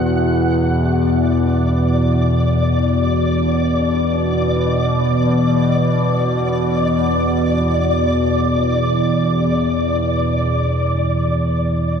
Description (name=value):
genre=dark ambient drone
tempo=free time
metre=none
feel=none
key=unclear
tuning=A4 = 441 Hz
part: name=dark detuned synth bell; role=arpeggios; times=0.0-12.0 s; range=none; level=barely audible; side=none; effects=none
part: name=analog drone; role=drone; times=0.0-12.0 s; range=E2 to B2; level=-16 LUFS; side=equal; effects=chorus
part: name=flickering grainy texture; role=texture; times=0.0-12.0 s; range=D5 to F#5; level=-21 LUFS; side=left 1 dB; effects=built-in reverb
room=wet cathedral reverb, RT60 5.4 s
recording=none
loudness=-15 LUFS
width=side -7 dB against mid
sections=0.0-12.0 A section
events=none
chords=0.0 E5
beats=free time